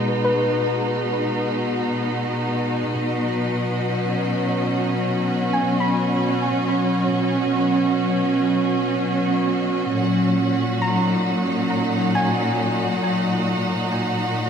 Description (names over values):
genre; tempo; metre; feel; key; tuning
ambient; free time; none; none; unclear; A4 = 435 Hz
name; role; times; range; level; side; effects
clear symphonic string section; sustained chords; 0.0-14.5 s; A#2 to F#4; -20 LUFS; equal; none
soft round pluck; arpeggios; 0.0-13.3 s; B4 to B5; -27 LUFS; equal; chorus, tape echo
bright studio violin section; texture; 0.0-14.5 s; D#5 to F#5; -35 LUFS; equal; none
room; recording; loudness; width
wet plate reverb, RT60 3.4 s; dreamy mix soaked in reverb; -19 LUFS; side -7 dB against mid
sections
0.0-14.5 A section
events
fade-in on violin section 0.0-14.5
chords
0.0 G#m7; 2.9 F#sus4; 9.9 D#m